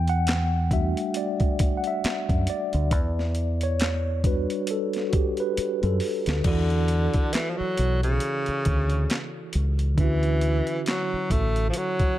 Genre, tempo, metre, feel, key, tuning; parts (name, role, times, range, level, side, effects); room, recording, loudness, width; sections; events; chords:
R&B, neo-soul; 68 BPM; 4/4; swing 58% on 16ths; E dorian; A4 = 441 Hz
mellow tine electric piano; accompaniment; 0.0-12.2 s; D3 to G5; -28 LUFS; equal; medium stereo tremolo
deep dub fingered electric bass; bass; 0.0-11.7 s; A1 to F#2; -24 LUFS; equal
boom bap sampler-style drum kit; drums; 0.1-12.2 s; crash cymbal, handclaps, hi-hat, kick drum, snare drum; -26 LUFS; equal
breathy tenor saxophone; melody; 6.5-12.2 s; C#3 to A3; -27 LUFS; equal
digital ambience; dark, warm production; -22 LUFS; side -13 dB against mid
0.0-6.4 A section; 6.4-12.2 B section
tine electric piano solo 0.0-6.4; drum fill 5.6-6.4
0.0 Em11; 2.9 Em9; 6.4 E9sus4; 10.0 Dmaj9